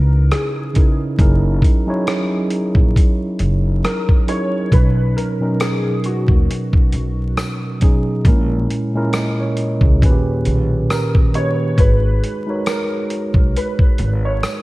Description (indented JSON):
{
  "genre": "lo-fi hip hop",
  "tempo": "68 BPM",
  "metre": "4/4",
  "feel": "swing 57% on 16ths",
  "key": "G# minor",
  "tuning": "A4 = 440 Hz",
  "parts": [
    { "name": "felt-muted upright piano", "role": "melody", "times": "0.0-14.6 s", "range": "F#4 to C#5", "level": "-25 LUFS", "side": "left 1 dB", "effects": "analog chorus, low-pass filter" },
    { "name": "mellow tine electric piano", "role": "accompaniment", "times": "0.0-14.6 s", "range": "A#2 to D#5", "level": "-20 LUFS", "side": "right 1 dB", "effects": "medium stereo tremolo, cassette tape, low-pass filter" },
    { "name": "upright bass", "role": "bass", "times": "0.0-14.4 s", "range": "F#1 to D#2", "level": "-17 LUFS", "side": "equal", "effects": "none" },
    { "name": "dusty soul sampler-style drum kit", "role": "drums", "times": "0.3-14.6 s", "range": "hi-hat, kick drum, rim click", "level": "-15 LUFS", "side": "equal", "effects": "vintage 12-bit sampler grit" },
    { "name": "tambourine", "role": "percussion", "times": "5.6-14.6 s", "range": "none", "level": "-38 LUFS", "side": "left 4 dB", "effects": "none" }
  ],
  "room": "light reverb, small room ambience",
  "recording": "vinyl crackle",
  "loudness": "-14 LUFS",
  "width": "side -20 dB against mid",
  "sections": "0.0-14.6 A section",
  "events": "none",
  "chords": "0.0 C#m7; 1.2 F#13; 4.7 Bmaj7; 8.3 A#m7b5; 10.0 D#7b13; 11.8 G#m9",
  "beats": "0.31 | 1.19 2.08 2.96 3.84 | 4.72 5.60 6.49 7.37 | 8.25 9.13 10.02 10.90 | 11.78 12.66 13.54 14.43"
}